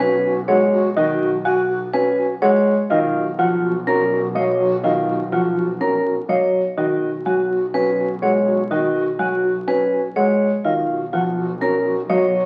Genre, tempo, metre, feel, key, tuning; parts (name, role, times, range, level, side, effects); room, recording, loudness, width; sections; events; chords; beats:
classical, minimalist pattern music; 124 BPM; 4/4; straight; A4 = 440 Hz
dark baby grand piano; melody; 0.0-12.4 s; C#5 to A#5; -29 LUFS; equal
mellow hollow alto flute; second line; 0.0-12.5 s; F#4; -28 LUFS; equal
dark grand piano; accompaniment; 0.0-12.4 s; D#3 to C#4; -25 LUFS; equal
vibraphone with medium hard mallets; arpeggios; 0.0-12.4 s; E#4 to C#5; -23 LUFS; equal
rich chamber double bass section; bass; 0.0-12.5 s; B1; -34 LUFS; equal
hollow concert flute; arpeggios; 0.5-12.2 s; D#5 to G#5; -28 LUFS; equal
moderate large studio reverb, RT60 1.0 s; very old 78 rpm record, vinyl crackle; -19 LUFS; mono
0.0-12.5 A section
0.0 C#7sus4/B; 2.9 D#m7/B; 6.8 C#7sus4/B; 10.6 D#m7/B
0.00 0.48 | 0.97 1.45 1.93 2.42 | 2.90 3.39 3.87 4.35 | 4.84 5.32 5.80 6.29 | 6.77 7.26 7.74 8.22 | 8.71 9.19 9.68 10.16 | 10.64 11.13 11.61 12.10